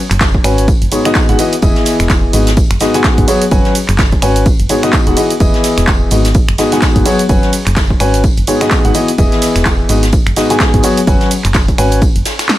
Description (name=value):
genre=piano house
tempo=127 BPM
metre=4/4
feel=swing 58% on 16ths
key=G# minor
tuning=A4 = 440 Hz
part: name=solid FM bass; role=bass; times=0.1-12.2 s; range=D#1 to G#1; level=-15 LUFS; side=equal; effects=sidechain pumping
part: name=punchy analog drum machine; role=drums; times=0.1-12.6 s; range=cabasa, finger snaps, handclaps, hi-hat, ride cymbal, snare drum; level=-18 LUFS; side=right 1 dB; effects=none
part: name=electronic kick drum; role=drums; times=0.2-12.1 s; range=none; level=-13 LUFS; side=equal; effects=none
part: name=soft brush drum kit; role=drums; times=0.2-12.6 s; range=hi-hat, snare drum, tambourine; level=-24 LUFS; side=left 1 dB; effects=sidechain pumping on hats, high-pass filter on hats, high-pass filter on snare, sidechain pumping on perc, high-pass filter on perc, high-pass filter on room
part: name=warm concert grand piano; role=riff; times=0.4-12.0 s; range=G#2 to G#5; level=-14 LUFS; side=left 1 dB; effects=sidechain pumping, digital delay
room=small room ambience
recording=none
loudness=-9 LUFS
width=side -14 dB against mid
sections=0.0-12.6 A section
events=none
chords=0.0 F#sus4; 0.7 G#m7; 1.6 Emaj7; 2.3 G#m7; 3.5 F#sus4; 4.5 G#m7; 5.4 Emaj7; 6.1 G#m7; 7.3 F#sus4; 8.2 G#m7; 9.2 Emaj7; 9.9 G#m7; 11.1 F#sus4; 12.0 N.C.